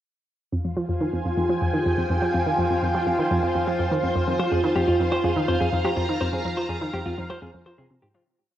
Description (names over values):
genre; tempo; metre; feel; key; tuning
ambient, sequencer-driven space music; 124 BPM; 4/4; straight; F minor; A4 = 441 Hz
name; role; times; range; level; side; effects
string machine, full ensemble; sustained chords; 0.8-8.3 s; F4 to Bb5; -24 LUFS; right 1 dB; phaser, ensemble chorus, cassette tape
analog pluck; riff; 0.5-8.3 s; F2 to F3; -25 LUFS; equal; chorus, cassette tape, analog delay
clean electric guitar; arpeggios; 4.4-8.2 s; F4 to C5; -29 LUFS; left 2 dB; auto-pan, cassette tape, analog delay
room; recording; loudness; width
wet spring reverb, RT60 1.4 s, digital ambience; home recording on cassette; -21 LUFS; side -12 dB against mid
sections
0.5-8.3 A section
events
fade-out 5.7-8.3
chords
0.5 Fmadd9